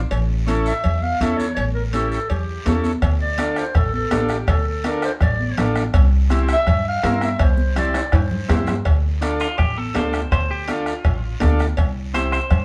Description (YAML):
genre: latin, cumbia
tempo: 165 BPM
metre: 4/4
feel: straight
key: D minor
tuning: A4 = 445 Hz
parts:
  - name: upright bass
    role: bass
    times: 0.0-12.6 s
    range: A1 to G2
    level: -24 LUFS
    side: equal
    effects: none
  - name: cowbell and timbales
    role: percussion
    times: 0.1-12.6 s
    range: none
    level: -31 LUFS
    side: equal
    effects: none
  - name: guiro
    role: percussion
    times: 0.1-12.6 s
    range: none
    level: -41 LUFS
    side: equal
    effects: none
  - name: congas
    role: percussion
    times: 0.3-12.6 s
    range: none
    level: -31 LUFS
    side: equal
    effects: none
  - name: combo organ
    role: accompaniment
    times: 0.5-12.4 s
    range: C4 to Bb4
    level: -27 LUFS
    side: equal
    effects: none
  - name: growling clarinet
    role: second line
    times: 0.7-8.7 s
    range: G4 to F5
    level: -26 LUFS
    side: equal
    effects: none
  - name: bombo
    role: percussion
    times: 3.0-12.6 s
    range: none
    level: -24 LUFS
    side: equal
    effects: none
  - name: clean electric guitar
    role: melody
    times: 9.4-12.6 s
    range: F4 to C5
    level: -28 LUFS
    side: equal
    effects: spring reverb
room: wet studio reverb, RT60 0.6 s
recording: band playing live in one room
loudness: -20 LUFS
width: mono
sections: 0.0-8.9 A section; 8.9-12.6 B section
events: clarinet solo 0.0-8.9; drum fill 7.4-8.9; clean electric guitar solo 8.9-12.6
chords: 0.1 A; 3.0 Dm; 5.9 C; 8.9 Dm; 11.8 C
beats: | 0.12 0.48 0.84 1.21 | 1.57 1.94 2.30 2.67 | 3.03 3.40 3.76 4.12 | 4.49 4.85 5.22 5.58 | 5.95 6.31 6.67 7.04 | 7.40 7.77 8.13 8.50 | 8.86 9.23 9.59 9.96 | 10.32 10.69 11.05 11.41 | 11.78 12.14 12.51